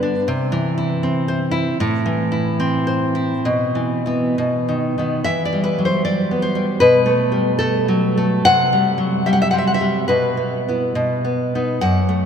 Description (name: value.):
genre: romantic piece for solo classical guitar.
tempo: 64-81 BPM.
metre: 2/4.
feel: rubato.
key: unclear.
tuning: A4 = 442 Hz.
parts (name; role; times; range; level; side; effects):
nylon-string guitar; solo; 0.0-12.3 s; F#2 to F#5; -16 LUFS; equal; none.
room: wet cathedral reverb, RT60 4.8 s.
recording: in a vast, echoing space.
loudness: -16 LUFS.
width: side -7 dB against mid.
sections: 0.0-5.2 A section; 5.2-12.3 B section.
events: none.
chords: 0.3 C; 1.8 Am; 3.5 Bsus4; 4.4 B; 5.2 Em; 6.8 B5; 8.4 C5; 10.1 Bsus4; 11.0 B.